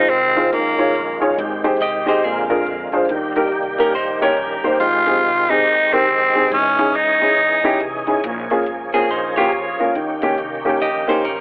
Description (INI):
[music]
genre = uptempo gospel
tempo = 140 BPM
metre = 4/4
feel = swing 62% on 8ths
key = Ab major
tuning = A4 = 440 Hz
[part]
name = growling tenor saxophone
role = melody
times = 0.0-1.2, 4.8-7.8 s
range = Bb3 to F4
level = -15 LUFS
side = equal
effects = none
[part]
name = dark grand piano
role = accompaniment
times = 0.0-11.2 s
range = Ab2 to Eb5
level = -18 LUFS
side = equal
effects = none
[part]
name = overdriven tonewheel organ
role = sustained chords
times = 0.0-11.4 s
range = C3 to Ab4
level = -24 LUFS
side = equal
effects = fast rotary speaker, chorus vibrato
[part]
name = upright bass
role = bass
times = 0.0-11.4 s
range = Ab1 to Ab2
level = -39 LUFS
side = equal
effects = transformer saturation
[part]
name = clean electric guitar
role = second line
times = 1.8-4.8, 8.9-11.4 s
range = C4 to Eb5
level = -22 LUFS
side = right 1 dB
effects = none
[sound]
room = moderate echo chamber reverb, RT60 1.8 s, studio reverb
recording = worn, warbling old tape, cassette tape, warbly pitch drift, telephone sound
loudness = -15 LUFS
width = side -28 dB against mid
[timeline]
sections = 0.0-11.4 A section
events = none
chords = 0.0 Fm7; 0.5 Eb9sus4; 1.4 Abmaj7; 2.2 Bb7; 3.1 Eb; 4.8 Abmaj7; 6.5 Dbmadd9/Ab; 8.2 Bbm7; 10.0 Eb7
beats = 0.10 0.53 0.95 | 1.38 1.81 2.24 2.67 | 3.10 3.52 3.95 4.38 | 4.81 5.24 5.66 6.09 | 6.52 6.95 7.38 7.81 | 8.24 8.67 9.10 9.53 | 9.96 10.39 10.82 11.24